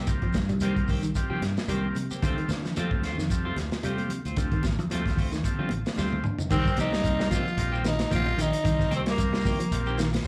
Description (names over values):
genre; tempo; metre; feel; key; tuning
afrobeat; 112 BPM; 4/4; swing 55% on 16ths; C dorian; A4 = 440 Hz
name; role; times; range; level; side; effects
clean electric guitar; stabs; 0.0-10.2 s; Eb3 to G4; -39 LUFS; equal; lush chorus, plate reverb, slapback echo
fingered electric bass; bass; 0.0-10.2 s; A1 to D3; -33 LUFS; equal; none
combo organ; accompaniment; 0.1-10.3 s; G3 to C5; -39 LUFS; equal; plate reverb, slapback echo
clean electric guitar; arpeggios; 0.1-10.1 s; D3 to G3; -35 LUFS; equal; slapback echo
crunchy breakbeat drum kit; drums; 0.1-10.3 s; crash cymbal, hi-hat, kick drum, snare drum, toms; -32 LUFS; equal; none
shekere; percussion; 0.1-10.3 s; none; -41 LUFS; equal; none
congas; percussion; 0.4-9.6 s; none; -39 LUFS; equal; none
growling tenor saxophone; melody; 6.5-10.1 s; Bb3 to F4; -32 LUFS; equal; plate reverb, slapback echo
room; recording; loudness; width
light reverb; live gig heard through the venue's PA, club reverb; -27 LUFS; mono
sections
0.0-6.5 A section; 6.5-10.3 B section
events
drum fill 6.0-6.5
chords
0.0 Cm7; 2.2 Dm7; 6.5 Cm7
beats
| 0.08 0.62 1.15 1.69 | 2.23 2.76 3.30 3.83 | 4.37 4.91 5.44 5.98 | 6.51 7.05 7.58 8.12 | 8.65 9.19 9.72 10.26